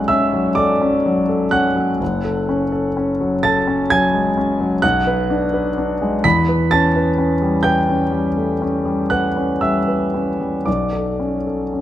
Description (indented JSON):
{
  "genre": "classical, impressionist solo piano",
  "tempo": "37-44 BPM (dotted quarters)",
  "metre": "9/8",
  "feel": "rubato",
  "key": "B minor",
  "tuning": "A4 = 439 Hz",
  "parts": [
    { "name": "warm concert grand piano", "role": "solo", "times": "0.0-11.8 s", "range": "F#1 to B6", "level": "-16 LUFS", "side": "equal", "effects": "none" }
  ],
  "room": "moderate concert hall reverb, RT60 2.2 s",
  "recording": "close, detailed microphones",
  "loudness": "-16 LUFS",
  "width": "side -12 dB against mid",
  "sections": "0.0-11.8 A section",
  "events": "none",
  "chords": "0.0 Bm11; 2.0 F#m; 4.8 Bm6; 6.2 Em6; 10.7 Bm9"
}